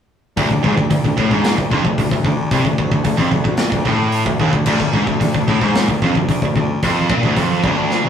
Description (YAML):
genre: heavy metal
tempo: 112 BPM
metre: 4/4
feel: straight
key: D minor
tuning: A4 = 440 Hz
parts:
  - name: sludgy distorted guitar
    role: riff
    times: 0.4-8.1 s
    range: D2 to C3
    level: -19 LUFS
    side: left 4 dB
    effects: overdrive
  - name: tight distorted guitar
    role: riff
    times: 0.4-8.1 s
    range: D2 to C3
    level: -21 LUFS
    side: right 7 dB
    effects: distortion
  - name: raspy baritone saxophone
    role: bass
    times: 0.4-8.1 s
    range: C2 to A2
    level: -22 LUFS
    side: equal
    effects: none
  - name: big rock drum kit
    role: drums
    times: 0.4-8.0 s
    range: crash cymbal, hi-hat, kick drum, snare drum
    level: -19 LUFS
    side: equal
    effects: none
room: moderate stone room reverb, RT60 1.3 s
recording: rough rehearsal-room recording, tube saturation, studio reverb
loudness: -14 LUFS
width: side -8 dB against mid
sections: 0.4-8.1 A section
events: drum fill 7.9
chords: 0.4 Dm